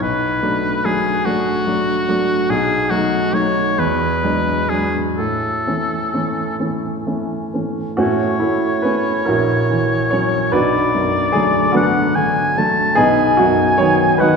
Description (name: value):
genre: classical, romantic duo for oboe and grand piano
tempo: 41-50 BPM (dotted quarters)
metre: 6/8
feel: rubato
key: A major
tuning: A4 = 440 Hz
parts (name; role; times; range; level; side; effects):
- clear oboe; melody; 0.0-14.4 s; F#4 to A5; -19 LUFS; left 1 dB; none
- clear baby grand piano; accompaniment; 0.0-14.4 s; A#1 to C#5; -17 LUFS; equal; none
room: wet concert hall reverb, RT60 2.0 s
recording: heard from further back in the room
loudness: -15 LUFS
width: side -5 dB against mid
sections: 0.0-8.0 A section; 8.0-14.4 A section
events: none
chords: 0.0 Bm7; 2.5 B7; 3.8 E9; 5.2 A; 9.3 F#7/A#; 10.5 Bm7; 13.0 B